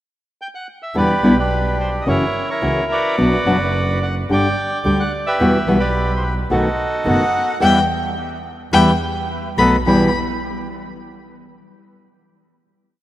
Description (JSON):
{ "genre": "tango", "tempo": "108 BPM", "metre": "4/4", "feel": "rubato", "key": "E minor", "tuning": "A4 = 440 Hz", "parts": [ { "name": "bandoneon", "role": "melody", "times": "0.4-10.1 s", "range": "D4 to G5", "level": "-21 LUFS", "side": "right 1 dB", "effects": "analog delay" }, { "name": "nylon-string guitar", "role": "accompaniment", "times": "0.9-10.1 s", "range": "E2 to G4", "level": "-18 LUFS", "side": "left 1 dB", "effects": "none" }, { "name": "dark double bass", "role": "bass", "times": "0.9-10.1 s", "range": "F#1 to E2", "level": "-23 LUFS", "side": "right 2 dB", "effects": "none" }, { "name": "dark violin", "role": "second line", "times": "7.1-10.1 s", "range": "F#5 to B5", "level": "-20 LUFS", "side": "left 3 dB", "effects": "none" } ], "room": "moderate lush hall reverb, RT60 2.8 s", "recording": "rough home demo mix", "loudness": "-15 LUFS", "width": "side -13 dB against mid", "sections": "0.0-1.0 pickup bar; 1.0-9.9 A section; 9.9-12.1 final chord", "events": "band accent 7.6-9.9", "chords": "0.0 N.C.; 1.0 Em7; 2.1 F#7; 3.2 Bm; 4.3 G5; 5.4 Emadd9; 6.5 B7; 7.6 Em; 9.3 B7; 9.9 Em", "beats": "0.40 | 0.95 1.51 2.07 2.63 | 3.19 3.74 4.30 4.85 | 5.40 5.95 6.50 7.05 | 7.61 8.16 8.72 9.29 | 9.85" }